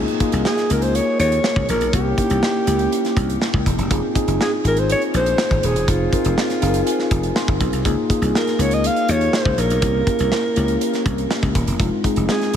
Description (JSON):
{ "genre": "polished 1980s jazz-funk pop", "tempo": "122 BPM", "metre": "4/4", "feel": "straight", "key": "unclear", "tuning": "A4 = 441 Hz", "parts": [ { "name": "mellow tine electric piano", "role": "accompaniment", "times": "0.0-12.6 s", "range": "Ab3 to C6", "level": "-22 LUFS", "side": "left 2 dB", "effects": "wide subtle chorus" }, { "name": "dry thumbed slap bass", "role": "bass", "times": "0.0-12.6 s", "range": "Eb1 to Eb2", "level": "-21 LUFS", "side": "equal", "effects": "none" }, { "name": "modern studio drum kit", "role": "drums", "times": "0.1-12.6 s", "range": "hi-hat, kick drum, snare drum", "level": "-23 LUFS", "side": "right 1 dB", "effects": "none" }, { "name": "breathy alto saxophone", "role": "melody", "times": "0.5-12.6 s", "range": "F4 to F5", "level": "-22 LUFS", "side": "right 1 dB", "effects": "ping-pong delay" } ], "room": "moderate huge ambient reverb, RT60 8.1 s", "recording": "dreamy mix soaked in reverb", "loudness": "-16 LUFS", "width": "side -9 dB against mid", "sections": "0.0-12.6 A section", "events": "tine electric piano fill 6.4-7.9", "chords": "0.0 Db69; 1.9 C7b9; 3.9 Fm7; 7.9 Db69; 9.8 C7b9; 11.8 Fm7" }